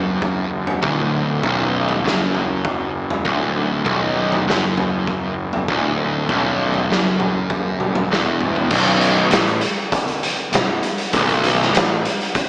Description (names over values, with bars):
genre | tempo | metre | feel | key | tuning
stoner and doom metal | 99 BPM | 4/4 | straight | B minor | A4 = 441 Hz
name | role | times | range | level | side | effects
fuzz guitar | riff | 0.0-12.0 s | B1 to A2 | -19 LUFS | equal | distortion
fuzz picked electric bass | bass | 0.0-12.0 s | B0 to A1 | -23 LUFS | equal | overdrive, tube saturation
raw garage drum kit | drums | 0.2-12.5 s | crash cymbal, hi-hat, kick drum, snare drum, toms | -20 LUFS | equal | none
room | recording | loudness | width
moderate studio reverb, RT60 0.8 s | small speaker sound | -16 LUFS | side -27 dB against mid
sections
0.0-8.7 A section; 8.7-12.5 B section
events
drum fill 8.1-8.7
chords
0.0 Bm; 8.7 B7(no3)